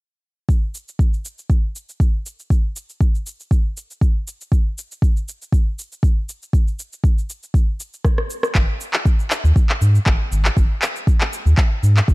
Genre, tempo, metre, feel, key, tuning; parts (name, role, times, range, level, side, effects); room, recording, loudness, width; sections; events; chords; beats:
afro house; 119 BPM; 4/4; swing 54% on 16ths; A4 = 440 Hz
electronic kick drum; drums; 0.5-12.1 s; -16 LUFS; equal; overdrive
electronic shaker, rim click and handclaps; drums; 0.5-12.1 s; -24 LUFS; equal; overdrive
round analog bass; bass; 8.6-12.1 s; G#1 to G#2; -14 LUFS; equal; sidechain pumping
little or no reverb; dark, warm production; -17 LUFS; side -23 dB against mid
0.5-8.6 A section; 8.6-12.1 B section
drum fill 8.0-8.6
| 0.48 0.99 1.49 2.00 | 2.50 3.01 3.51 4.01 | 4.52 5.02 5.53 6.03 | 6.54 7.04 7.54 8.05 | 8.55 9.06 9.56 10.06 | 10.57 11.07 11.58 12.08